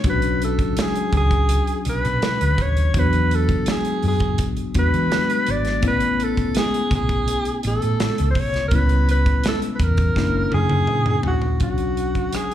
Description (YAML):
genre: lush 1970s-style soul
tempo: 83 BPM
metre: 4/4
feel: straight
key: B dorian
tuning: A4 = 439 Hz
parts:
  - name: breathy alto saxophone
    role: melody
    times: 0.0-12.5 s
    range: F#4 to D5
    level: -23 LUFS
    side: right 1 dB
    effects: slapback echo
  - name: mellow tine electric piano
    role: accompaniment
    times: 0.0-12.5 s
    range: F#3 to F#4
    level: -25 LUFS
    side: left 4 dB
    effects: auto-pan, slapback echo
  - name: hollow-body short-scale fingered electric bass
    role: bass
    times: 0.0-12.2 s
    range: F#1 to E3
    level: -21 LUFS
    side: equal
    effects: none
  - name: modern studio drum kit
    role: drums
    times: 0.0-12.5 s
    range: hi-hat, kick drum, rim click, snare drum, toms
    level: -23 LUFS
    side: equal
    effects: none
room: little or no reverb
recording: live gig heard through the venue's PA, club reverb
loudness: -18 LUFS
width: side -11 dB against mid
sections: 0.0-11.6 A section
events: drum fill 10.2-11.6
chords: 0.0 Bm69; 2.9 E9; 5.8 Amaj9; 8.7 C#m7b5; 10.2 F#7b13; 11.6 Bmadd9